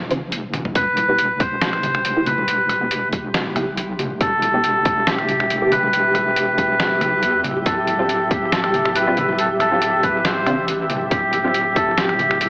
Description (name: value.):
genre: deep dubstep.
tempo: 139 BPM.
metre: 4/4.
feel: swing 53% on 16ths, half-time.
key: E minor.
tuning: A4 = 440 Hz.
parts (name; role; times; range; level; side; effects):
wobble bass; bass; 0.0-12.5 s; D1 to E2; -28 LUFS; equal; chorus, tube saturation.
congas; percussion; 0.0-12.5 s; none; -31 LUFS; left 1 dB; none.
filtered dub chord stab; stabs; 0.1-11.6 s; B3 to G4; -25 LUFS; equal; phaser, ensemble chorus, dub echo.
trip hop sampler-style drum kit; drums; 0.1-12.5 s; finger snaps, hi-hat, snare drum, toms; -23 LUFS; equal; overdrive.
melodica; melody; 0.8-12.5 s; G4 to C5; -19 LUFS; equal; dub echo.
deep dark ambient pad; sustained chords; 2.7-12.5 s; G4 to E5; -26 LUFS; equal; chorus, built-in reverb.
electronic kick drum; drums; 0.8-11.9 s; none; -22 LUFS; equal; none.
flickering grainy texture; texture; 1.8-12.5 s; G4; -28 LUFS; equal; built-in reverb.
room: moderate lush hall reverb, RT60 2.0 s.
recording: AM radio sound.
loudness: -16 LUFS.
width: side -25 dB against mid.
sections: 0.0-12.5 A section.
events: filter sweep on synth stab 0.0-12.5; drum fill 0.5.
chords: 0.0 Dm; 0.8 Em; 7.7 D5.